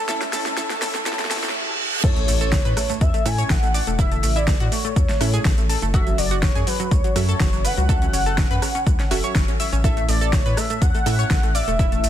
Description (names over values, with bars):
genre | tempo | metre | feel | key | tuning
progressive house | 123 BPM | 4/4 | straight | A major | A4 = 442 Hz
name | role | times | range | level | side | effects
expressive portamento lead | melody | 0.0-12.1 s | A4 to G#5 | -26 LUFS | equal | analog chorus, cassette tape, dub echo
analog pluck | arpeggios | 0.0-12.1 s | F#3 to E5 | -28 LUFS | left 1 dB | chorus, sidechain pumping, dub echo
wide unison pluck | stabs | 0.0-12.1 s | A2 to E5 | -30 LUFS | right 4 dB | sidechain pumping, dub echo
riser, reverse cymbal and impact | sound effects | 1.0-4.0 s | none | -28 LUFS | right 2 dB | none
backwards swelling texture | texture | 0.0-1.5 s | A4 to A5 | -44 LUFS | right 1 dB | none
deep house drum kit | drums | 0.1-12.1 s | crash cymbal, hi-hat, rim click, shaker, snare drum | -26 LUFS | equal | overdrive
electronic kick drum | drums | 2.0-11.9 s | none | -21 LUFS | equal | overdrive
round analog bass | bass | 2.3-12.1 s | E1 to A2 | -23 LUFS | equal | tube saturation, sidechain pumping
room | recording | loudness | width
digital ambience | dense, heavily limited modern master, high-pass filter | -18 LUFS | side -11 dB against mid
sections
0.0-2.0 A section; 2.0-12.1 B section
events
build-up 0.0-2.0; drum fill 0.0-1.5; filter sweep on analog synth lead 0.0-2.0; filter sweep 0.0-2.0; riser 1.0-2.0; reverse cymbal 1.2-2.0; drop 2.0-12.1; impact 2.0-4.0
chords
0.0 A; 5.9 F#m7